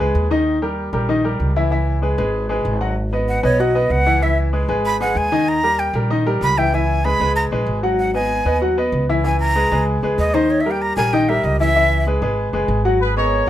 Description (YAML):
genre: latin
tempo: 191 BPM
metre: 4/4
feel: straight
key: unclear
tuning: A4 = 440 Hz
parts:
  - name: clear upright piano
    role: accompaniment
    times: 0.0-13.5 s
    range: D#3 to F#5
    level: -19 LUFS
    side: left 1 dB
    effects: none
  - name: upright bass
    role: bass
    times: 0.0-13.5 s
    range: F#1 to D#2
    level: -21 LUFS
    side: right 1 dB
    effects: none
  - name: breathy bright jazz flute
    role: melody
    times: 3.3-12.0 s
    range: B#4 to B5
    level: -19 LUFS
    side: right 1 dB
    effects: none
  - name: mellow trumpet section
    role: melody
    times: 13.0-13.5 s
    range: G#4 to C#5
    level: -18 LUFS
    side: equal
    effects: none
room: moderate studio reverb, RT60 0.7 s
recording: close, detailed microphones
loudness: -16 LUFS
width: side -12 dB against mid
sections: 0.0-3.0 A section; 3.0-13.0 B section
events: flute solo 3.0-13.0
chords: 0.5 D#7; 1.7 C#m7; 3.0 G#m7; 4.2 C#m7; 5.5 D#7; 6.7 C#m7; 8.0 G#m7; 9.2 C#m7; 10.5 D#7; 11.8 C#m7